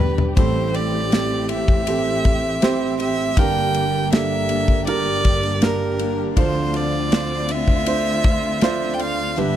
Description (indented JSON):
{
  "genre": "pop ballad",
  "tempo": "80 BPM",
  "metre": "4/4",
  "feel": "straight",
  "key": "D minor",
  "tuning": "A4 = 439 Hz",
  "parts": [
    { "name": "clear violin", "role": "melody", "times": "0.0-9.6 s", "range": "Bb4 to G5", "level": "-24 LUFS", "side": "equal", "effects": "none" },
    { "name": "dark concert grand piano", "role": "accompaniment", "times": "0.0-9.6 s", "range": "G1 to D5", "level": "-23 LUFS", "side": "right 6 dB", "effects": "none" },
    { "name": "dark studio string section", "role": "sustained chords", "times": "0.0-9.6 s", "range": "D2 to G4", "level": "-27 LUFS", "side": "left 3 dB", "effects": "none" },
    { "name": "picked steel-string acoustic guitar", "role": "arpeggios", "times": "0.0-9.6 s", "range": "G2 to Bb4", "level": "-29 LUFS", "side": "left 14 dB", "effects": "none" },
    { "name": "modern studio drum kit", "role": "drums", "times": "0.2-9.2 s", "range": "kick drum, ride cymbal, snare drum, toms", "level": "-19 LUFS", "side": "left 1 dB", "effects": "none" }
  ],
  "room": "small room ambience",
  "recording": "dry, close 1970s-style studio recording",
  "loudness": "-17 LUFS",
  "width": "side -11 dB against mid",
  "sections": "0.0-9.6 A section",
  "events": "drum fill 0.0-0.4",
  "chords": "0.4 Am7; 3.4 Gm; 6.4 Dm7"
}